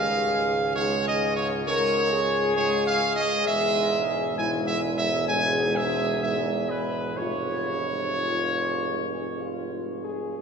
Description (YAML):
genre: classical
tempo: 65 BPM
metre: 4/4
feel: straight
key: unclear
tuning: A4 = 440 Hz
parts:
  - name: mellow trumpet section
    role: melody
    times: 0.0-10.0 s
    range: B4 to G#5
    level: -25 LUFS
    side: right 2 dB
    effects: none
  - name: dark trombone section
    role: sustained chords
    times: 0.0-10.4 s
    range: Ab2 to Ab3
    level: -33 LUFS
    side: right 1 dB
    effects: none
  - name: mellow French horn section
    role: sustained chords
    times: 0.0-10.4 s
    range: E4 to Bb4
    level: -29 LUFS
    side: left 4 dB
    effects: none
  - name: warm tuba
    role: bass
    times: 0.0-10.4 s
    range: E1 to Db2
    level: -31 LUFS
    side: right 2 dB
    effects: none
room: wet cathedral reverb, RT60 4.8 s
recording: minimal, uncompressed stereo recording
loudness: -23 LUFS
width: side -6 dB against mid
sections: 0.0-10.4 A section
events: none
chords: 0.0 Db; 3.5 E; 7.2 Db/F